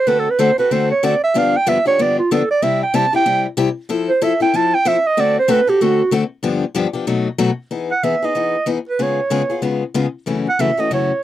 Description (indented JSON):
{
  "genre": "jazz",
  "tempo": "188 BPM",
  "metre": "4/4",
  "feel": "swing 61% on 8ths",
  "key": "E major from 7.7 s",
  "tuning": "A4 = 440 Hz",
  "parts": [
    { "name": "warm clarinet", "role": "melody", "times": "0.0-11.2 s", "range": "F4 to A5", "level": "-16 LUFS", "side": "right 3 dB", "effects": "none" },
    { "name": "picked steel-string acoustic guitar", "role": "accompaniment", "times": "0.1-11.1 s", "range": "F#2 to A4", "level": "-18 LUFS", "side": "left 4 dB", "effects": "none" }
  ],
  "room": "light reverb",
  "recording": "dry, close 1970s-style studio recording",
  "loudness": "-15 LUFS",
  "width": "side -12 dB against mid",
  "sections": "0.0-7.7 A section; 7.7-11.2 B section",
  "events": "clarinet solo 0.0-7.7",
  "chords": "0.1 D7; 1.3 G7; 2.6 C; 3.9 Fmaj7; 5.2 D7; 6.4 G7; 7.1 B7; 7.7 Emaj7; 9.0 C#7; 10.3 F#m7"
}